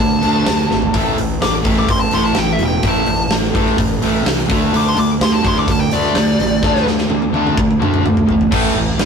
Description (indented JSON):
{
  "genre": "hard rock",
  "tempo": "127 BPM",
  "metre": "4/4",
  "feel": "straight",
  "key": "unclear",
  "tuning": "A4 = 440 Hz",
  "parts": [
    { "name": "dark smooth lead guitar", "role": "melody", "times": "0.0-6.8 s", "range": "D5 to D6", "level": "-20 LUFS", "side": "left 1 dB", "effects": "overdrive" },
    { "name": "overdriven semi-hollow guitar", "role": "riff", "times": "0.0-9.1 s", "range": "A2 to D4", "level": "-20 LUFS", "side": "left 5 dB", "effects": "none" },
    { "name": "sludgy distorted guitar", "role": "riff", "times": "0.0-9.1 s", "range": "A2 to D4", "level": "-19 LUFS", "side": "right 6 dB", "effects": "overdrive" },
    { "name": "fuzz fingered electric bass", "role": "bass", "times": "0.0-9.1 s", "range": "E1 to D2", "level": "-21 LUFS", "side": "equal", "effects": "overdrive" },
    { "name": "huge arena drum kit", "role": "drums", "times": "0.2-9.1 s", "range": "crash cymbal, hi-hat, kick drum, snare drum, toms", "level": "-18 LUFS", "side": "left 1 dB", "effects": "none" },
    { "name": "distorted electric guitar", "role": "riff", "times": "8.5-9.1 s", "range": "A2 to A3", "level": "-22 LUFS", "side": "equal", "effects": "overdrive" }
  ],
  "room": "moderate stone room reverb, RT60 1.0 s",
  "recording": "rough rehearsal-room recording, warm saturation",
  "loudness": "-13 LUFS",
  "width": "side -6 dB against mid",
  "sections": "0.0-8.5 A section",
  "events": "lead electric guitar solo 0.0-8.5; drum fill 0.7, 6.6-8.5",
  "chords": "0.0 D5; 0.9 A5; 4.5 D5; 8.5 A5"
}